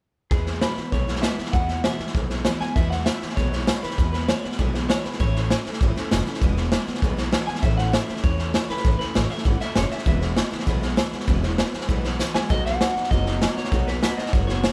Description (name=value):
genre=rockabilly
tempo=197 BPM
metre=4/4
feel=straight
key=E major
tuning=A4 = 439 Hz
part: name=electric guitar through a small old amp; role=melody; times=0.3-14.7 s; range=G#4 to G#5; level=-32 LUFS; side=equal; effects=subtle chorus, analog delay
part: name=picked steel-string acoustic guitar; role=accompaniment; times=0.3-14.7 s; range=E2 to F#4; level=-32 LUFS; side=equal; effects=none
part: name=upright bass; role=bass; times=0.3-14.7 s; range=E1 to E2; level=-28 LUFS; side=equal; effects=none
part: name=raw garage drum kit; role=drums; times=0.3-14.7 s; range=hi-hat, kick drum, snare drum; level=-25 LUFS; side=equal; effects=none
room=moderate studio reverb, RT60 0.5 s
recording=none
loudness=-23 LUFS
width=mono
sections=0.3-2.8 A section; 2.8-14.7 B section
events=drum fill 12.2-12.5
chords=0.3 E; 5.2 A; 6.4 E; 7.6 A; 10.1 E; 12.5 B